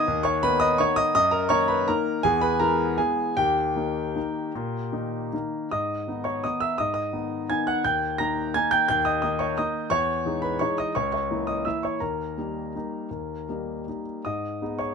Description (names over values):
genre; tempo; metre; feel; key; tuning
classical, piano waltz; 146-185 BPM; 3/4; rubato; G# minor; A4 = 439 Hz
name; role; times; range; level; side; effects
warm concert grand piano; solo; 0.0-14.9 s; C#2 to A#6; -23 LUFS; equal; none
room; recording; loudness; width
light reverb; minimal, uncompressed stereo recording; -23 LUFS; side -6 dB against mid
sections
0.0-5.7 A section; 5.7-14.9 B section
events
none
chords
0.0 G#m (rootless); 1.2 D#m/F#; 2.2 E; 3.4 D#; 5.7 G#m; 7.8 D#; 9.9 Emaj7; 10.9 A#dim/C#; 12.0 D#; 14.2 G#m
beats
| 0.09 0.44 0.80 | 1.15 1.51 1.87 | 2.23 2.58 2.97 | 3.35 3.75 4.16 | 4.55 4.93 5.33 | 5.72 6.08 6.44 | 6.79 7.14 7.50 | 7.84 8.19 8.55 | 8.89 9.22 9.57 | 9.90 10.24 10.60 | 10.94 11.29 11.65 | 12.01 12.38 12.75 | 13.11 13.49 13.87 | 14.24 14.61